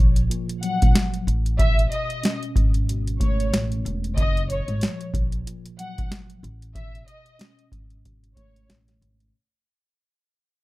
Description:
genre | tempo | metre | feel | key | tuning
hip hop, boom-bap hip-hop | 93 BPM | 4/4 | swing 58% on 16ths | unclear | A4 = 441 Hz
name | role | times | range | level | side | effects
mellow tine electric piano | accompaniment | 0.0-9.4 s | A#2 to C#4 | -31 LUFS | equal | medium stereo tremolo, high-pass filter, low-pass filter
upright bass | bass | 0.0-9.3 s | E1 to A#1 | -25 LUFS | equal | none
booming analog drum machine | drums | 0.2-9.3 s | hi-hat, kick drum, snare drum | -21 LUFS | equal | overdrive
warm studio violin section | melody | 0.6-8.7 s | C#5 to F#5 | -30 LUFS | equal | high-pass filter, low-pass filter
room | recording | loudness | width
little or no reverb | none | -21 LUFS | side -19 dB against mid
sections
0.0-9.3 A section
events
fade-out 0.0-9.3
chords
0.0 F#maj7; 1.3 Amaj9; 4.2 F#maj7; 6.4 Amaj9

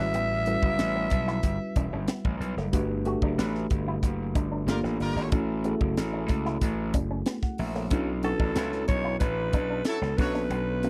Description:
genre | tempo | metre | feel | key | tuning
polished 1980s jazz-funk pop | 93 BPM | 4/4 | straight | B minor | A4 = 441 Hz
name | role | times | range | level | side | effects
breathy alto saxophone | melody | 0.0-2.4, 8.2-10.9 s | A4 to E5 | -32 LUFS | equal | slapback echo
warm horn section | second line | 0.0-10.4 s | F#3 to C#5 | -37 LUFS | equal | none
mellow tine electric piano | accompaniment | 0.0-10.9 s | G3 to F#5 | -34 LUFS | equal | subtle chorus
electric guitar with an envelope filter | riff | 0.0-10.9 s | A3 to F#4 | -39 LUFS | equal | subtle chorus
gritty slap bass | bass | 0.0-10.9 s | E1 to C#2 | -33 LUFS | equal | overdrive
tight funk drum kit | drums | 0.1-10.9 s | hi-hat, kick drum, snare drum | -30 LUFS | equal | none
room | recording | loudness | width
little or no reverb | dry, close 1970s-style studio recording | -28 LUFS | mono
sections
0.0-10.9 A section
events
none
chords
0.0 A13; 2.7 Gmaj9; 4.7 Gm7; 5.3 F#m7; 7.9 Bm11; 10.2 Bm9

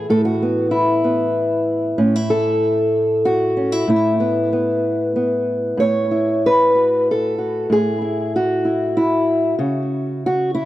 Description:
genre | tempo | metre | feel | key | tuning
folk, solo fingerstyle acoustic guitar | 95 BPM | 3/4 | straight | A major | A4 = 440 Hz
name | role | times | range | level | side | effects
fingerpicked old ladder-braced acoustic guitar | solo | 0.0-10.7 s | A2 to C#5 | -16 LUFS | equal | tape echo
room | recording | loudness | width
light reverb | dry, close 1970s-style studio recording | -16 LUFS | side -14 dB against mid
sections
0.0-10.7 A section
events
none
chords
0.0 Asus2; 9.6 C#sus4

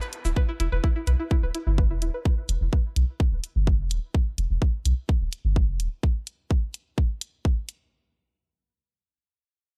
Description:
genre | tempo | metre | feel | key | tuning
minimal techno | 127 BPM | 4/4 | straight | E minor | A4 = 440 Hz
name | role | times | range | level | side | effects
string-like resonator pluck | riff | 0.0-2.2 s | E4 to B4 | -36 LUFS | equal | chorus, phaser, sidechain pumping, dub echo
electronic cabasa and hi-hat | drums | 0.0-7.8 s | none | -36 LUFS | equal | none
punchy sub bass | bass | 0.3-5.9 s | D1 to B1 | -26 LUFS | equal | sidechain pumping
electronic kick drum | drums | 0.4-7.5 s | none | -25 LUFS | equal | none
room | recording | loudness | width
digital ambience | dark, warm production | -25 LUFS | mono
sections
0.4-7.9 A section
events
filter sweep on synth pluck 0.4-2.3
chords
0.4 Em7

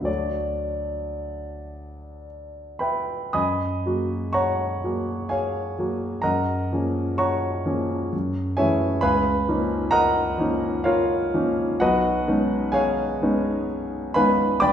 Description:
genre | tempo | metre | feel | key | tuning
classical, impressionist solo piano | 53-67 BPM | 3/4 | rubato | D major, F# major from 3.4 s | A4 = 440 Hz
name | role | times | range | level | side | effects
warm grand piano | solo | 0.0-14.7 s | G1 to D#6 | -21 LUFS | equal | none
room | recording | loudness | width
wet recital hall reverb, RT60 1.4 s | heard from further back in the room | -21 LUFS | side -9 dB against mid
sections
0.0-3.4 A section; 3.4-14.7 B section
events
none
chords
0.1 Dmaj7; 3.4 F#69; 6.2 A#m7/F#; 8.1 Amaj7/F#; 9.0 C#13; 11.8 B69

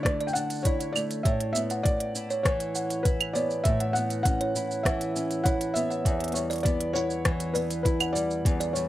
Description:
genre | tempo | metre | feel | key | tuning
folktronica | 100 BPM | 4/4 | straight | unclear | A4 = 440 Hz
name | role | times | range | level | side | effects
felt-muted upright piano | melody | 0.0-8.9 s | B4 to G5 | -31 LUFS | left 1 dB | plate reverb, tape echo
nylon-string guitar | arpeggios | 0.0-8.9 s | E2 to E4 | -30 LUFS | left 1 dB | plate reverb
electronic kick drum | drums | 0.1-8.6 s | none | -26 LUFS | equal | none
organic electronic drum kit | drums | 0.1-8.9 s | claves, hi-hat, rim click, shaker | -32 LUFS | right 2 dB | none
kalimba | second line | 0.2-8.7 s | C#5 to F#5 | -33 LUFS | right 3 dB | plate reverb, tape echo
room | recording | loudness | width
moderate studio reverb, RT60 0.5 s | none | -24 LUFS | side -14 dB against mid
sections
0.0-8.9 A section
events
none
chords
0.0 Dsus2; 1.3 Aadd9; 6.1 Em

